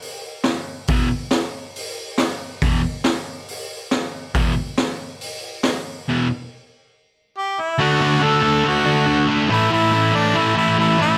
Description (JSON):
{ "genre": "garage rock duo or trio", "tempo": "139 BPM", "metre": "4/4", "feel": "straight", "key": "unclear", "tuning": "A4 = 440 Hz", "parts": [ { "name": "raw garage drum kit", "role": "drums", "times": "0.0-5.7 s", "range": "hi-hat, kick drum, snare drum", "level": "-25 LUFS", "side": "equal", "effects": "none" }, { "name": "fuzz guitar", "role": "riff", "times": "0.9-11.2 s", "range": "E2 to D4", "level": "-20 LUFS", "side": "equal", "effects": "distortion" }, { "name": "clear harmonica", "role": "melody", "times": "7.4-11.2 s", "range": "D4 to A4", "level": "-21 LUFS", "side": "equal", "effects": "overdrive" } ], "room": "moderate club reverb, RT60 0.7 s", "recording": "none", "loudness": "-20 LUFS", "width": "mono", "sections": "0.0-7.8 A section; 7.8-11.2 B section", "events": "none", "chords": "0.0 E5; 7.8 D; 9.5 A5" }